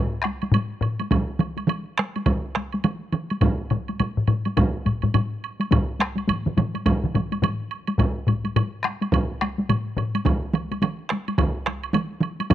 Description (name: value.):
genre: japanese traditional, taiko drum ensemble.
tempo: 105 BPM.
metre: 4/4.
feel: swing 60% on 16ths.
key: none.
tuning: none.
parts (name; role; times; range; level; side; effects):
taiko ensemble; percussion; 0.2-12.5 s; none; -24 LUFS; left 2 dB; none.
woodblock; percussion; 0.2-12.5 s; none; -31 LUFS; right 9 dB; none.
taiko ensemble; percussion; 0.3-12.5 s; none; -27 LUFS; left 1 dB; none.
solo taiko drums; percussion; 1.1-12.5 s; none; -24 LUFS; right 1 dB; none.
taiko ensemble; percussion; 1.1-12.4 s; none; -25 LUFS; right 3 dB; none.
room: studio reverb.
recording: dry, close 1970s-style studio recording.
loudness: -22 LUFS.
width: side -12 dB against mid.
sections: 0.0-12.5 A section.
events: speeding up 0.0-12.5.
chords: none.